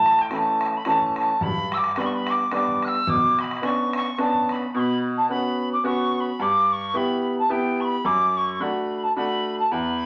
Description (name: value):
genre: celtic folk, Celtic waltz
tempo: 108 BPM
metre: 3/4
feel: swing 55% on 8ths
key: B minor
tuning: A4 = 441 Hz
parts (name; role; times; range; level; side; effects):
- mellow tin whistle; melody; 0.0-10.1 s; G5 to F#6; -25 LUFS; equal; none
- bright upright piano; accompaniment; 0.0-10.1 s; E2 to G4; -28 LUFS; equal; none
- bodhran; percussion; 0.1-4.6 s; none; -33 LUFS; equal; none
room: wet studio reverb, RT60 0.8 s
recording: none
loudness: -23 LUFS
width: mono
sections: 0.0-4.7 A section; 4.7-10.1 B section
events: none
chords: 0.0 A; 1.4 G; 3.1 Bmadd9; 4.7 Bsus2; 6.4 G6; 8.0 D/F#